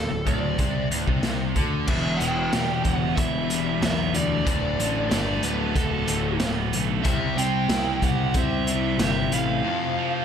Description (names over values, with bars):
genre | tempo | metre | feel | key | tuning
classic rock | 93 BPM | 4/4 | straight | unclear | A4 = 439 Hz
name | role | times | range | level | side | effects
biting lead guitar | melody | 0.0-10.2 s | A4 to G5 | -29 LUFS | equal | overdrive
biting overdriven guitar | riff | 0.0-10.2 s | D2 to C5 | -28 LUFS | right 12 dB | spring reverb
cranked stack guitar | riff | 0.0-10.2 s | D2 to C4 | -28 LUFS | left 10 dB | overdrive
fuzz picked electric bass | bass | 0.0-9.6 s | D1 to D2 | -29 LUFS | right 1 dB | overdrive
raw garage drum kit | drums | 0.3-9.5 s | crash cymbal, hi-hat, kick drum, snare drum | -26 LUFS | equal | none
room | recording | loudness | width
light reverb | none | -21 LUFS | side -8 dB against mid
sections
0.0-1.9 A section; 1.9-10.2 B section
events
break 9.6-10.2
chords
0.0 N.C.; 1.9 Em; 4.5 D6; 7.1 C; 9.6 F5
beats
0.59 1.24 | 1.88 2.53 3.17 3.82 | 4.47 5.12 5.76 6.41 | 7.06 7.70 8.35 9.00 | 9.65